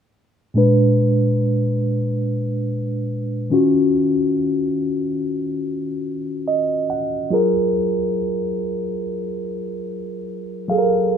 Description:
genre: R&B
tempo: 71 BPM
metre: 4/4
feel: straight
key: unclear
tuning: A4 = 441 Hz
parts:
  - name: mellow tine electric piano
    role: accompaniment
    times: 0.5-11.2 s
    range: A#2 to F#5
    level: -18 LUFS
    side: equal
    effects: medium stereo tremolo
room: light reverb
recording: rough home demo mix, low-pass filter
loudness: -18 LUFS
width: side -8 dB against mid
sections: 0.6-11.2 A section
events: filter sweep 0.6-11.2; tine electric piano fill 6.1-7.3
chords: 0.6 A#7b9; 3.5 D#m9; 7.3 F#maj9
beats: | 0.56 1.40 2.25 3.09 | 3.94 4.79 5.63 6.47 | 7.32 8.16 9.01 9.86 | 10.70

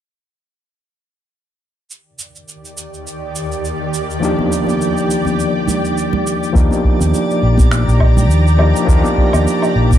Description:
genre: sunset chillout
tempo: 103 BPM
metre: 4/4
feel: swing 56% on 16ths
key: unclear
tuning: A4 = 439 Hz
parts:
  - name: shimmering ambient pad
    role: sustained chords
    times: 2.7-10.0 s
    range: Eb2 to Bb5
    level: -21 LUFS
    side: equal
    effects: chorus, built-in reverb, vintage 12-bit sampler grit
  - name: electronic shaker, finger snaps and woodblock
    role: drums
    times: 1.9-10.0 s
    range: none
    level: -25 LUFS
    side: equal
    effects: none
  - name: overdriven tine electric piano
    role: accompaniment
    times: 4.2-10.0 s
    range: F3 to G4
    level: -17 LUFS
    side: left 1 dB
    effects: medium tremolo, auto-pan, low-pass filter, ping-pong delay
  - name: congas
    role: percussion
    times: 4.4-10.0 s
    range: none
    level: -25 LUFS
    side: right 3 dB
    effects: none
  - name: fingered electric bass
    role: bass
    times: 6.5-10.0 s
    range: Bb1 to Eb2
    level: -13 LUFS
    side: equal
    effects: none
  - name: electronic kick drum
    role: drums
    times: 6.5-10.0 s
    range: none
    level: -13 LUFS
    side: equal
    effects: none
  - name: drifting glass-harmonics texture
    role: texture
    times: 6.8-10.0 s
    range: D5 to D6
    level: -26 LUFS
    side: left 3 dB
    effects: chorus, built-in reverb
room: light reverb, digital ambience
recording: none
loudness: -12 LUFS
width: side -11 dB against mid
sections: 1.9-6.5 A section; 6.5-10.0 B section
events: filter sweep on tine electric piano 6.5-10.0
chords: 1.9 Ebmaj7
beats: | 1.89 2.47 3.05 3.64 | 4.22 4.80 5.38 5.97 | 6.55 7.13 7.71 8.30 | 8.88 9.46

